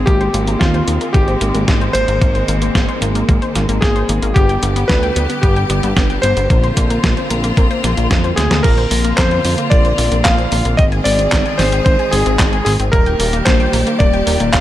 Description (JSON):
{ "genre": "italo disco", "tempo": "112 BPM", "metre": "4/4", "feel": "straight", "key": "unclear", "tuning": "A4 = 438 Hz", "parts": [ { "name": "clear electric grand piano", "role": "melody", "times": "0.0-14.6 s", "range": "F4 to F5", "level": "-19 LUFS", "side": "equal", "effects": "ping-pong delay, shimmer reverb" }, { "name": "clear studio string section", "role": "sustained chords", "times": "0.0-14.6 s", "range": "D3 to Ab4", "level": "-22 LUFS", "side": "equal", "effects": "shimmer reverb" }, { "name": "analog pluck", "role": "arpeggios", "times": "0.0-14.6 s", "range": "Bb3 to Ab5", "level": "-23 LUFS", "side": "left 3 dB", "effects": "chorus, tape echo, shimmer reverb" }, { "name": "fat analog bass", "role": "bass", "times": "0.0-14.6 s", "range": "Eb1 to F2", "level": "-18 LUFS", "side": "equal", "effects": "tube saturation" }, { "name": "clean 12-bit digital drum machine", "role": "drums", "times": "0.1-14.6 s", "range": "crash cymbal, handclaps, hi-hat, snare drum", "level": "-20 LUFS", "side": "equal", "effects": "gated reverb" }, { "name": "electronic kick drum", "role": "drums", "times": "0.1-14.6 s", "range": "none", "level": "-15 LUFS", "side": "equal", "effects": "none" } ], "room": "light reverb, digital ambience", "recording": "none", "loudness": "-12 LUFS", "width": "side -13 dB against mid", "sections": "0.0-8.6 A section; 8.6-14.6 B section", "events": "drum fill 8.4", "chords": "0.1 Abadd9; 4.4 G; 6.5 Bbadd9; 10.8 Ab; 12.9 Eb", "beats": "| 0.07 0.61 1.14 1.68 | 2.22 2.75 3.29 3.82 | 4.36 4.89 5.43 5.97 | 6.50 7.04 7.57 8.11 | 8.64 9.18 9.72 10.25 | 10.79 11.32 11.86 12.39 | 12.93 13.47 14.00 14.54" }